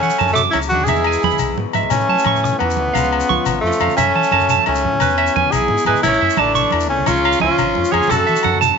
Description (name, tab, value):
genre	highlife guitar band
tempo	116 BPM (dotted quarters)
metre	12/8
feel	straight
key	A major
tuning	A4 = 440 Hz
part	warm tenor saxophone	melody	0.0-8.6 s	A3 to A4	-18 LUFS	left 1 dB	none
part	raspy tenor saxophone	second line	0.0-8.6 s	E3 to F#4	-26 LUFS	right 10 dB	none
part	electric guitar through a small old amp	accompaniment	0.0-8.8 s	E2 to E#4	-27 LUFS	left 13 dB	none
part	clean electric guitar	arpeggios	0.0-8.8 s	A4 to D6	-19 LUFS	right 12 dB	slapback echo
part	fingered electric bass	bass	0.0-8.7 s	G#1 to F#3	-24 LUFS	equal	none
part	congas	percussion	0.0-8.8 s	none	-27 LUFS	right 11 dB	none
part	shekere	percussion	0.0-8.7 s	none	-27 LUFS	left 8 dB	none
part	agogo bells	percussion	0.2-8.6 s	none	-24 LUFS	left 14 dB	none
room	moderate echo chamber reverb, RT60 1.4 s, small room ambience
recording	1960s-style stereo with parts hard left and right, nothing above 7.7 kHz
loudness	-14 LUFS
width	side -6 dB against mid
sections	0.0-1.9 A section; 1.9-8.8 A section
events	none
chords	0.0 F#m; 0.9 E; 1.9 A; 2.9 C#; 4.0 F#m7; 5.0 E; 6.0 A; 7.1 C#; 8.1 F#m7